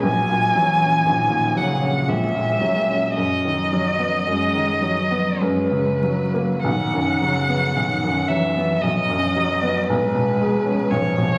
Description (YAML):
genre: classical, slow romantic movement for piano trio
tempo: 46-60 BPM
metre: 3/4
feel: rubato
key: B major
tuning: A4 = 439 Hz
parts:
  - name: rich violin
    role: melody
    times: 0.0-11.4 s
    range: B4 to G#5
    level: -24 LUFS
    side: equal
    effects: none
  - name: dark cello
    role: second line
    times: 0.0-11.4 s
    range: C#3 to G#3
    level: -27 LUFS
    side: equal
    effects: none
  - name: bright baby grand piano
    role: accompaniment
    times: 0.0-11.4 s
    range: A#1 to C#4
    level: -25 LUFS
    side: equal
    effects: none
room: wet recital hall reverb, RT60 1.8 s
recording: vinyl crackle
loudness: -20 LUFS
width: mono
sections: 0.0-11.4 A section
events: none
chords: 0.0 F#/A#; 3.2 B/F#; 5.4 F#; 6.6 B; 9.9 C#7/B